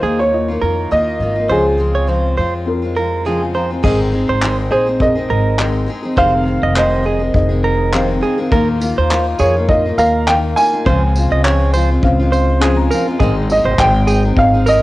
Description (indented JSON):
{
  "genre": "acoustic pop",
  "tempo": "103 BPM",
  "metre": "4/4",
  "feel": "swing 55% on 16ths",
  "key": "Ab major",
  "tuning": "A4 = 438 Hz",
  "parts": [
    { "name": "warm upright piano", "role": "melody", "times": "0.0-14.8 s", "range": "Ab4 to Ab5", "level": "-16 LUFS", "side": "right 1 dB", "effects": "cassette tape" },
    { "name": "felt-muted upright piano", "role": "accompaniment", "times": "0.0-14.8 s", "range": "Bb3 to Bb5", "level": "-24 LUFS", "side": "left 4 dB", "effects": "cassette tape" },
    { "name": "picked steel-string acoustic guitar", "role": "accompaniment", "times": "0.0-14.8 s", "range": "F2 to Ab4", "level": "-20 LUFS", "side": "left 1 dB", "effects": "cassette tape" },
    { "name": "direct-recorded clean electric guitar", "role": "arpeggios", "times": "0.0-14.8 s", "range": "Ab4 to Eb5", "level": "-20 LUFS", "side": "right 4 dB", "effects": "cassette tape" },
    { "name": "upright bass", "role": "bass", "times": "0.0-14.8 s", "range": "F1 to F2", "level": "-17 LUFS", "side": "equal", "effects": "none" },
    { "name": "vintage brush drum kit", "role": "drums", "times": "3.8-14.8 s", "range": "crash cymbal, handclaps, kick drum, tambourine", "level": "-20 LUFS", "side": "equal", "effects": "cassette tape" }
  ],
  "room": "studio ambience",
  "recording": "home recording on cassette",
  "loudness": "-12 LUFS",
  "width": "side -17 dB against mid",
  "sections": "0.0-3.8 A section; 3.8-13.2 B section; 13.2-14.8 C section",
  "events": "felt piano fill 3.0-3.8, 12.0-13.2",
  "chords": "0.0 Ebsus2; 1.5 Dbmaj7; 3.8 Ab; 6.2 Fm7; 8.5 Ebsus2; 10.9 Dbmaj7; 13.2 Ab"
}